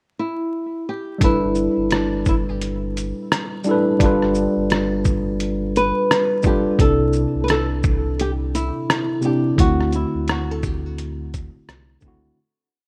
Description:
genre	lo-fi hip hop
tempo	86 BPM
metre	4/4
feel	swing 61% on 16ths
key	G major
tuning	A4 = 440 Hz
part	flamenco guitar	melody	0.2-12.0 s	D4 to B4	-25 LUFS	equal	low-pass filter
part	tine electric piano	accompaniment	1.2-12.4 s	C3 to B4	-23 LUFS	equal	overdrive, low-pass filter
part	sub bass with octave	bass	1.2-12.3 s	G1 to D2	-28 LUFS	equal	none
part	trip hop sampler-style drum kit	drums	1.2-12.2 s	hi-hat, kick drum, rim click, shaker	-23 LUFS	equal	vintage 12-bit sampler grit
room	light reverb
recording	rough home demo mix, vinyl crackle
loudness	-20 LUFS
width	mono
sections	0.0-1.2 pickup bar; 1.2-12.4 A section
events	fade-out 9.6-12.4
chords	0.0 N.C.; 1.2 G6; 4.0 G7; 6.8 C69; 9.6 D7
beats	0.52 | 1.21 1.91 2.61 3.31 | 4.00 4.70 5.40 6.10 | 6.79 7.49 8.19 8.89 | 9.59 10.28 10.98 11.68

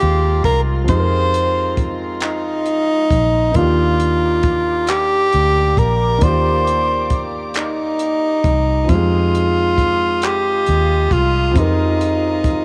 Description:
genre	slow six-eight R&B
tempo	45 BPM (dotted quarters)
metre	6/8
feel	straight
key	unclear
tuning	A4 = 440 Hz
part	breathy tenor saxophone	melody	0.0-12.6 s	Eb4 to C5	-19 LUFS	equal	none
part	warm grand piano	accompaniment	0.0-12.6 s	Eb3 to D5	-27 LUFS	equal	cassette tape
part	warm chamber string section	sustained chords	0.0-12.6 s	Ab3 to Eb6	-35 LUFS	equal	cassette tape
part	warm horn section	stabs	0.0-12.6 s	Ab3 to D5	-31 LUFS	equal	cassette tape
part	vintage muted fingered electric bass	bass	0.0-12.6 s	Bb1 to F2	-21 LUFS	equal	none
part	compact cocktail drum kit	drums	0.4-12.6 s	handclaps, hi-hat, kick drum	-22 LUFS	equal	none
room	light reverb, studio reverb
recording	home recording on cassette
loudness	-16 LUFS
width	mono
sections	0.0-12.6 A section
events	none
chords	0.0 Fm7; 3.6 Ebmaj9; 8.9 Fm7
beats	| 0.89 2.22 | 3.56 4.89 | 6.22 7.56 | 8.89 10.22 | 11.56

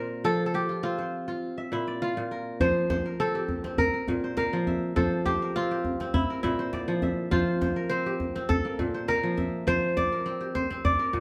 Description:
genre	west african traditional, West African string and xylophone music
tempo	102 BPM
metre	4/4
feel	straight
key	F major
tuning	A4 = 439 Hz
part	kora	melody	0.0-11.2 s	E4 to D5	-31 LUFS	equal	none
part	kora	arpeggios	0.0-11.2 s	Bb2 to F5	-32 LUFS	equal	none
part	djembe	percussion	2.6-11.2 s	none	-33 LUFS	equal	none
room	moderate stone room reverb, RT60 1.1 s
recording	band playing live in one room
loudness	-28 LUFS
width	mono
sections	0.0-2.6 A section; 2.6-11.2 B section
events	none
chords	0.2 F5; 1.4 Bb; 2.6 F; 3.8 Bb5; 5.0 F5; 6.1 Bb; 7.3 F5; 8.5 Bb5; 9.7 F5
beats	| 0.24 0.83 1.42 2.01 | 2.60 3.19 3.78 4.37 | 4.96 5.55 6.14 6.73 | 7.32 7.91 8.50 9.08 | 9.67 10.26 10.85

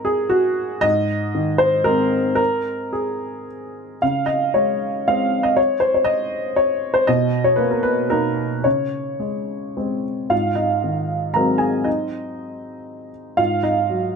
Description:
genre	neoclassical minimalist piano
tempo	106-121 BPM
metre	3/4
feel	rubato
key	unclear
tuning	A4 = 439 Hz
part	warm upright piano	solo	0.0-14.2 s	Ab2 to Bb5	-18 LUFS	equal	none
room	light reverb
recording	dark, warm production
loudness	-17 LUFS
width	side -5 dB against mid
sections	0.0-10.3 A section; 10.3-14.2 B section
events	none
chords	0.0 Ab7; 4.0 Db5; 7.1 Cbmaj7; 8.6 Db5; 10.3 Ab7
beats	0.31 | 0.84 1.35 1.86 | 2.39 2.93 3.47 | 4.02 4.54 5.06 | 5.57 6.08 6.58 | 7.08 7.58 8.09 | 8.65 9.21 9.76 | 10.31 10.83 11.35 | 11.86 12.36 12.87 | 13.38 13.89

